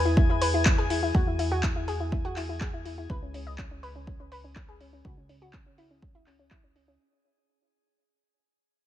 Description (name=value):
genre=progressive house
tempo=123 BPM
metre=4/4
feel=straight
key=unclear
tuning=A4 = 441 Hz
part: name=plucky analog bass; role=bass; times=0.0-7.0 s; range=C#2 to E2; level=-32 LUFS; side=equal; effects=sidechain pumping
part: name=drifting glass-harmonics texture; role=texture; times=0.0-7.0 s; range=G#4 to G#5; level=-36 LUFS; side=left 3 dB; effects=chorus, built-in reverb, sidechain pumping
part: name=analog pluck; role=arpeggios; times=0.1-6.9 s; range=C#4 to D#5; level=-30 LUFS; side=left 3 dB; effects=chorus, sidechain pumping, ping-pong delay
part: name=electronic kick drum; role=drums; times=0.2-6.6 s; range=none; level=-25 LUFS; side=equal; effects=overdrive, studio reverb
part: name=deep house drum kit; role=drums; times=0.4-6.9 s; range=handclaps, hi-hat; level=-33 LUFS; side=equal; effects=overdrive, low-pass filter on hats, studio reverb, low-pass filter on snare
room=light reverb, digital ambience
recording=none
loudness=-24 LUFS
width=side -12 dB against mid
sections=0.0-7.0 A section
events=fade-out 0.0-7.0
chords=0.0 E; 3.1 C#5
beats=0.17 0.66 | 1.15 1.63 2.12 2.61 | 3.10 3.58 4.07 4.56 | 5.05 5.54 6.02 6.51